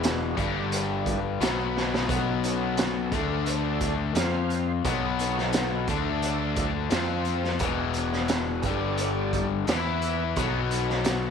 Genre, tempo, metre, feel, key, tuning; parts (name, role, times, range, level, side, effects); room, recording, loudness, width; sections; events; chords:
blues rock power trio and southern rock; 87 BPM; 4/4; straight; A4 = 439 Hz
overdriven tonewheel organ; sustained chords; 0.0-11.3 s; F3 to F5; -34 LUFS; right 14 dB; slow rotary speaker, chorus vibrato
crunchy overdriven guitar; riff; 0.0-11.3 s; E2 to F4; -27 LUFS; left 9 dB
growling picked electric bass; bass; 0.0-11.3 s; E1 to F2; -31 LUFS; right 3 dB; overdrive
raw garage drum kit; drums; 0.0-11.2 s; hi-hat, kick drum, snare drum; -30 LUFS; right 2 dB
studio reverb; 1960s-style stereo with parts hard left and right; -24 LUFS; side -6 dB against mid
0.0-11.3 A section
drum fill 1.8-2.1
0.4 G5; 1.4 B5; 2.1 B7; 3.1 D5; 4.2 F5; 4.9 B7; 5.9 D5; 6.9 F5; 7.6 E7; 8.6 G5; 9.7 E5; 10.4 B7